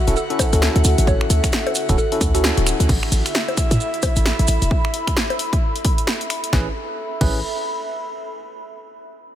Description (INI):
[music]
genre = UK garage, two-step garage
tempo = 132 BPM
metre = 4/4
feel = swing 60% on 16ths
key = A major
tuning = A4 = 440 Hz
[part]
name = mallet-like synth pluck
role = melody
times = 0.0-2.8 s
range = F#4 to C#5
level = -28 LUFS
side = right 1 dB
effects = chorus, phaser, vintage 12-bit sampler grit, diffuse ambient delay
[part]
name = airy breathy pad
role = sustained chords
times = 0.0-6.5 s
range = E4 to F#5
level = -30 LUFS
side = right 1 dB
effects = chorus, sidechain pumping
[part]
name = warbly tape-like pad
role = texture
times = 0.0-8.3 s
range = D3 to B5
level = -28 LUFS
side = equal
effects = chorus, built-in reverb, sidechain pumping
[part]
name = tine electric piano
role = stabs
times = 0.1-2.9, 6.5-7.4 s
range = C#4 to B4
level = -28 LUFS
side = equal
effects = medium stereo tremolo, diffuse ambient delay
[part]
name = short 808-style bass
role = bass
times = 0.1-7.4 s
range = D1 to A2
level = -18 LUFS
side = equal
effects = none
[part]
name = punchy analog drum machine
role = drums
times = 0.1-7.3 s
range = bongos, crash cymbal, finger snaps, hi-hat, snare drum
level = -24 LUFS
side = left 1 dB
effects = overdrive
[part]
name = maracas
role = percussion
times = 0.1-4.7 s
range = none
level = -29 LUFS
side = right 6 dB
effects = none
[part]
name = electronic kick drum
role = drums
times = 0.4-7.3 s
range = none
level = -20 LUFS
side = equal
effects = none
[sound]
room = light reverb, digital ambience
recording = none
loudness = -17 LUFS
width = side -11 dB against mid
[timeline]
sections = 0.0-2.9 A section; 2.9-6.5 B section; 6.5-8.3 C section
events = drop 0.0-2.9; band accent 2.4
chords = 0.0 Dmaj9; 2.9 Asus2; 6.5 Amaj9